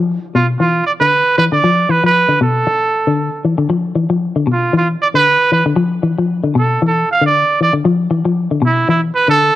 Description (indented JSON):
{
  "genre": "afrobeat",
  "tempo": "116 BPM",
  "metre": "4/4",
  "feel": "swing 55% on 16ths",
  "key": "G mixolydian",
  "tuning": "A4 = 440 Hz",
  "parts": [
    { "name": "electric guitar with an envelope filter", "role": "arpeggios", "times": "0.0-9.5 s", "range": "B2 to F3", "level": "-15 LUFS", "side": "left 3 dB", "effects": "spring reverb" },
    { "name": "clear trumpet", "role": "melody", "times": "0.4-9.6 s", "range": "E4 to F5", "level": "-13 LUFS", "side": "right 3 dB", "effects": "none" }
  ],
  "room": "studio ambience",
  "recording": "dry, close 1970s-style studio recording",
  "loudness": "-12 LUFS",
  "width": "side -14 dB against mid",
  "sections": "0.0-9.6 A section",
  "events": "none",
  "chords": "0.0 G7 (rootless)",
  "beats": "0.07 0.59 1.11 | 1.62 2.14 2.66 3.18 | 3.70 4.22 4.74 5.25 | 5.77 6.29 6.81 7.33 | 7.85 8.37 8.88 9.40"
}